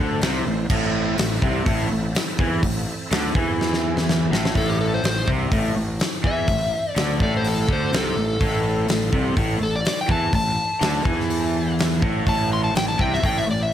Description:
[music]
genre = blues rock power trio and southern rock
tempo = 125 BPM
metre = 4/4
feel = straight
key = A minor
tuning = A4 = 440 Hz
[part]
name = overdriven tonewheel organ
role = sustained chords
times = 0.0-13.7 s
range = C4 to C5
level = -37 LUFS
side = right 4 dB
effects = none
[part]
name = raw garage guitar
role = riff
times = 0.0-13.7 s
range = A2 to E3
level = -24 LUFS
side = equal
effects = overdrive
[part]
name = fuzz fingered electric bass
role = bass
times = 0.0-13.7 s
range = A1 to E2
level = -26 LUFS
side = equal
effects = overdrive
[part]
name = big rock drum kit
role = drums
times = 0.2-13.3 s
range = crash cymbal, hi-hat, kick drum, snare drum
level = -24 LUFS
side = equal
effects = none
[part]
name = overdriven slide guitar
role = melody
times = 4.6-13.7 s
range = G4 to C6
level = -25 LUFS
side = left 2 dB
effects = none
[sound]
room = light reverb, small room ambience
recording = none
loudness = -19 LUFS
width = side -10 dB against mid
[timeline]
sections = 0.0-4.6 A section; 4.6-13.7 B section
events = drum fill 3.6-4.6; electric slide guitar solo 4.6-13.7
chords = 0.0 Am

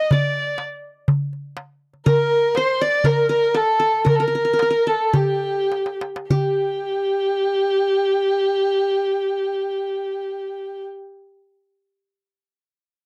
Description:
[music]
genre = Arabic maqam ensemble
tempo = 98-123 BPM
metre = 4/4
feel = straight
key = G maqam nahawand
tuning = A4 = 440 Hz
[part]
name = dark violin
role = melody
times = 0.0-10.8 s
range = G4 to Eb5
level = -22 LUFS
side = equal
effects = none
[part]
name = qanun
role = second line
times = 0.0-10.9 s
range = G4 to F#5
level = -28 LUFS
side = equal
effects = none
[part]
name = darbuka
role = percussion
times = 0.1-6.6 s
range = none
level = -23 LUFS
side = equal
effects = none
[sound]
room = little or no reverb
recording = dry, close 1970s-style studio recording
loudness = -20 LUFS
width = mono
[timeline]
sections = 0.0-6.3 A section; 6.3-11.2 B section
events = slowing down 2.1-6.3; drum fill 5.7-6.3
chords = none

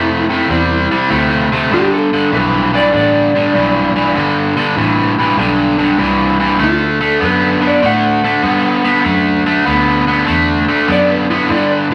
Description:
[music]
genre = electric blues shuffle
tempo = 98 BPM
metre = 4/4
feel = swing 68% on 8ths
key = unclear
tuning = A4 = 439 Hz
[part]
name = electric slide guitar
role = melody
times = 0.0-11.9 s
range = E4 to F#5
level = -19 LUFS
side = equal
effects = none
[part]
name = cranked stack guitar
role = riff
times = 0.0-11.9 s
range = G2 to B3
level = -15 LUFS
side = equal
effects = overdrive
[part]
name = vintage muted fingered electric bass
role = bass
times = 0.0-11.9 s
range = G1 to A2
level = -23 LUFS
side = equal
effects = none
[sound]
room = wet large studio reverb, RT60 1.0 s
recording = vinyl crackle, nothing above 11.0 kHz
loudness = -13 LUFS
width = mono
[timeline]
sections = 0.0-11.9 A section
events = none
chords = 0.0 Cadd9; 1.7 Gadd9; 6.6 D

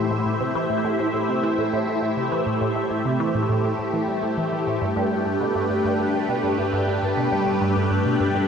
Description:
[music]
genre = ambient, sequencer-driven space music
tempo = 102 BPM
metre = 4/4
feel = straight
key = A minor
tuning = A4 = 439 Hz
[part]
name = lush unison pad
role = sustained chords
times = 0.0-8.5 s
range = A3 to G5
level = -22 LUFS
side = equal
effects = chorus, phaser
[part]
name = resonant blip pluck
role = riff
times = 0.0-8.5 s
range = G2 to A3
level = -24 LUFS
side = right 1 dB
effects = phaser, tape echo
[sound]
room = wet plate reverb, RT60 3.2 s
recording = dark, warm production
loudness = -20 LUFS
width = side -7 dB against mid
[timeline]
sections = 0.0-8.5 A section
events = none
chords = 0.0 Am7; 4.8 Gadd9

